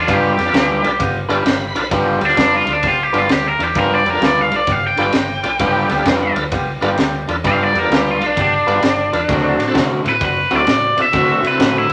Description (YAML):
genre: electric blues shuffle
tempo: 130 BPM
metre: 4/4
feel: swing 66% on 8ths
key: G mixolydian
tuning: A4 = 442 Hz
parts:
  - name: raw garage guitar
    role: melody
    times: 0.0-11.9 s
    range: D4 to G5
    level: -19 LUFS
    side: equal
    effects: overdrive
  - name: vintage muted fingered electric bass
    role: bass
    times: 0.0-11.9 s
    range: G1 to D3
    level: -30 LUFS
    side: equal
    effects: none
  - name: electric guitar at the edge of break-up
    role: riff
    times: 0.1-11.9 s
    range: D3 to B4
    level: -23 LUFS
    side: equal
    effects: none
  - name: dark horn section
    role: stabs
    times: 0.1-11.7 s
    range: F#3 to G4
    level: -26 LUFS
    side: equal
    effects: none
  - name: crunchy breakbeat drum kit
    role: drums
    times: 0.1-11.9 s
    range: kick drum, ride cymbal, snare drum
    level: -22 LUFS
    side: equal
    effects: none
  - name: bright tonewheel organ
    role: accompaniment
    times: 0.4-11.9 s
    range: C4 to B5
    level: -28 LUFS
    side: equal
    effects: slow rotary speaker, overdrive, chorus vibrato
room: moderate large studio reverb, RT60 1.4 s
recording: none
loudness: -16 LUFS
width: mono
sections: 0.0-1.9 A section; 1.9-11.9 A section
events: overdriven electric guitar solo 0.0-11.9; tonewheel organ fill 1.2-1.9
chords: 0.0 G7; 9.3 D7